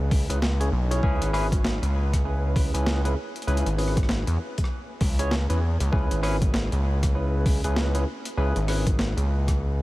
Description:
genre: glitch hop.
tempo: 98 BPM.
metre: 4/4.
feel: swing 60% on 16ths.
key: C# minor pentatonic.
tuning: A4 = 440 Hz.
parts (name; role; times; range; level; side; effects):
gritty driven synth bass; bass; 0.0-9.8 s; G#1 to E2; -24 LUFS; equal; tube saturation.
downlifter; sound effects; 0.0-1.0 s; none; barely audible; none; none.
boom bap sampler-style drum kit; drums; 0.1-9.6 s; hi-hat, rim click, snare drum; -32 LUFS; equal; overdrive.
electronic kick drum; drums; 0.1-9.6 s; none; -24 LUFS; equal; overdrive.
barky tine electric piano; stabs; 0.3-8.9 s; C#4 to C#5; -30 LUFS; equal; analog chorus, sidechain pumping, tape echo.
room: light reverb.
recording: vinyl crackle.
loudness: -22 LUFS.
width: side -18 dB against mid.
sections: 0.0-9.8 A section.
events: none.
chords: 0.0 C#m7.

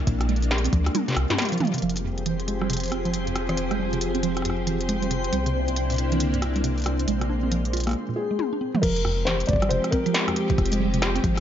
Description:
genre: IDM.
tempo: 137 BPM.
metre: 4/4.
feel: swing 62% on 16ths.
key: F melodic minor.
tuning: A4 = 438 Hz.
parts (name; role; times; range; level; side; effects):
soft string machine; sustained chords; 0.0-11.4 s; C3 to Ab4; -29 LUFS; equal; ensemble chorus, sidechain pumping.
mallet-like synth pluck; arpeggios; 0.1-11.4 s; C2 to F4; -28 LUFS; right 3 dB; chorus, tape echo.
warm sub bass; bass; 0.1-11.4 s; F1 to D2; -27 LUFS; equal; tube saturation.
electronic kick drum; drums; 0.1-0.8, 8.8-11.3 s; none; -24 LUFS; equal; none.
industrial drum kit; drums; 0.1-11.4 s; cabasa, crash cymbal, hi-hat, rim click, snare drum, toms; -28 LUFS; left 1 dB; ping-pong delay.
twinkling granular texture; texture; 2.2-8.0 s; C4 to C5; -33 LUFS; left 1 dB; built-in reverb.
felt-muted upright piano; melody; 8.2-11.0 s; G4 to D5; -27 LUFS; left 1 dB; ping-pong delay.
room: light reverb, digital ambience.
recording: nothing above 7.5 kHz.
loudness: -22 LUFS.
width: side -10 dB against mid.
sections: 0.0-1.8 A section; 1.8-8.8 B section; 8.8-11.4 C section.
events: drum fill 0.9-1.8, 8.4-8.8; kick drops out 1.4-1.8; filter sweep on synth arpeggio sound 1.8-8.8.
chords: 0.1 Bb7; 0.9 C7sus4; 1.8 Fmadd9; 5.3 C9; 7.1 Bb9; 8.8 Fmadd9.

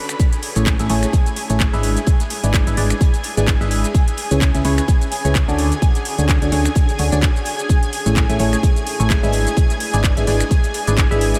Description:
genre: piano house.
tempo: 128 BPM.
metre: 4/4.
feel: swing 56% on 16ths.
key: A major.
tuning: A4 = 439 Hz.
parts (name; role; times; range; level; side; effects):
analog string pad; sustained chords; 0.0-11.4 s; G#4 to B5; -28 LUFS; equal; ensemble chorus, sidechain pumping.
cloth-damped thuddy drum kit; drums; 0.1-11.4 s; hi-hat, snare drum; -40 LUFS; equal; none.
house drum kit; drums; 0.1-11.4 s; finger snaps, handclaps, hi-hat, shaker; -28 LUFS; equal; none.
electronic kick drum; drums; 0.2-11.1 s; none; -18 LUFS; equal; none.
barking FM electric piano; riff; 0.6-11.4 s; A2 to E5; -24 LUFS; equal; phaser, sidechain pumping, delay.
solid FM bass; bass; 0.6-11.3 s; G#1 to D2; -21 LUFS; equal; sidechain pumping.
room: moderate huge ambient reverb, RT60 7.6 s.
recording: dreamy mix soaked in reverb.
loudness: -17 LUFS.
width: mono.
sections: 0.0-11.4 A section.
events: none.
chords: 0.2 Amaj7; 1.8 E7/G#; 3.9 C#m7; 5.6 Dmaj7; 7.7 Amaj7; 9.3 E7/G#.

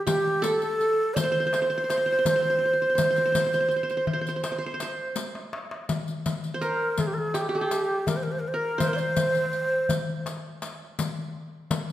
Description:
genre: Arabic maqam ensemble.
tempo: 82 BPM.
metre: 4/4.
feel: straight.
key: unclear.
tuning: A4 = 440 Hz.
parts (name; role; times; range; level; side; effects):
breathy ney; melody; 0.0-10.3 s; G4 to D5; -25 LUFS; right 1 dB; none.
qanun; second line; 0.0-10.2 s; G4 to C5; -30 LUFS; right 2 dB; none.
darbuka; percussion; 0.1-11.9 s; none; -31 LUFS; left 3 dB; none.
riq; percussion; 0.1-11.9 s; none; -35 LUFS; left 5 dB; none.
room: wet recital hall reverb, RT60 1.7 s.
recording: none.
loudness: -23 LUFS.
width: side -13 dB against mid.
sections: 0.0-5.9 A section; 5.9-11.9 B section.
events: drum fill 5.2-5.9.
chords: none.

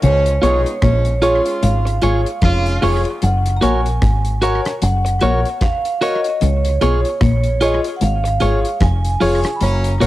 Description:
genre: roots reggae.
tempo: 75 BPM.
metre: 4/4.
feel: swing 58% on 16ths.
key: unclear.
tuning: A4 = 439 Hz.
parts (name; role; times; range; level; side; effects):
vibraphone with medium hard mallets; melody; 0.0-10.1 s; C#5 to B5; -22 LUFS; right 2 dB; cassette tape, dub echo.
warm horn section; second line; 0.0-3.0, 9.6-10.1 s; E#3 to B4; -24 LUFS; right 1 dB; cassette tape, dub echo.
mellow electric guitar; riff; 0.0-10.1 s; E#2 to C#3; -22 LUFS; left 4 dB; cassette tape.
deep dub fingered electric bass; bass; 0.0-10.1 s; E#1 to C#2; -17 LUFS; equal; none.
damped 70s drum kit; drums; 0.0-10.1 s; hi-hat, kick drum, rim click; -22 LUFS; equal; cassette tape, tape echo.
clean electric guitar; accompaniment; 0.4-10.1 s; E#4 to C#5; -21 LUFS; right 2 dB; cassette tape, dub echo.
clear concert grand piano; stabs; 0.4-10.1 s; E#4 to C#5; -22 LUFS; left 4 dB; cassette tape.
room: small room ambience.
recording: home recording on cassette.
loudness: -14 LUFS.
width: side -16 dB against mid.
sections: 0.0-10.1 A section.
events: none.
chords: 0.0 C#; 3.2 F#; 6.4 C#.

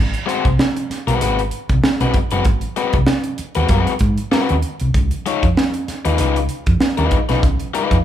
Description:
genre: funk.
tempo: 96 BPM.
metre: 4/4.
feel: swing 56% on 16ths.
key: unclear.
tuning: A4 = 440 Hz.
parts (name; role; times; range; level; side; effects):
hollow-body short-scale fingered electric bass; bass; 0.0-8.0 s; Gb1 to Ab2; -20 LUFS; right 1 dB; none.
crisp fusion drum kit; drums; 0.1-8.0 s; hi-hat, kick drum, snare drum; -18 LUFS; right 1 dB; none.
overdriven electric guitar; accompaniment; 0.3-8.0 s; Ab3 to Db5; -20 LUFS; left 6 dB; none.
room: light reverb.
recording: band playing live in one room.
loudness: -15 LUFS.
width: side -11 dB against mid.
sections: 0.0-8.0 A section.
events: none.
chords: 0.0 Ab7#9; 4.9 Db9.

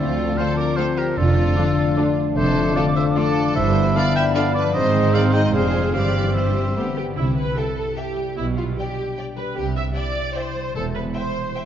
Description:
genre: cinematic, playful, whimsical film cue.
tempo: 151 BPM.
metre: 3/4.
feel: straight.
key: C major.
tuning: A4 = 440 Hz.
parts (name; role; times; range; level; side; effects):
rich studio violin section; melody; 0.0-11.5 s; E4 to E5; -29 LUFS; left 3 dB; none.
clear oboe; second line; 0.0-7.0 s; A4 to G5; -26 LUFS; right 2 dB; none.
mellow bassoon; accompaniment; 0.0-6.9 s; A3 to F4; -27 LUFS; right 1 dB; none.
dark French horn section; sustained chords; 0.0-7.0 s; A3 to Ab4; -27 LUFS; left 4 dB; none.
concert harp; arpeggios; 0.0-11.7 s; F2 to C6; -26 LUFS; left 6 dB; none.
clear studio cello section; bass; 0.0-11.1 s; D2 to C3; -27 LUFS; right 3 dB; none.
warm studio double bass section; bass; 0.0-11.1 s; E1 to D2; -25 LUFS; right 4 dB; none.
mellow silver concert flute; second line; 0.4-7.0 s; B5 to F6; -33 LUFS; equal; none.
rich studio violin section; second line; 0.4-11.6 s; B3 to G5; -32 LUFS; left 2 dB; none.
warm clarinet; second line; 0.4-6.8 s; C4 to Ab4; -31 LUFS; left 1 dB; none.
rich studio viola section; accompaniment; 0.4-11.5 s; D3 to E5; -28 LUFS; right 2 dB; none.
room: wet scoring stage reverb, RT60 1.7 s.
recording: dark, warm production, nothing above 7.6 kHz.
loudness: -18 LUFS.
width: side -9 dB against mid.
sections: 0.0-7.2 A section; 7.2-11.7 B section.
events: none.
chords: 0.0 Dm7; 1.2 Dm/F; 3.5 G7; 4.7 Ab; 5.5 Fm; 5.9 C/G; 6.8 G; 7.2 C; 8.4 G/B; 9.6 C; 10.8 C/E.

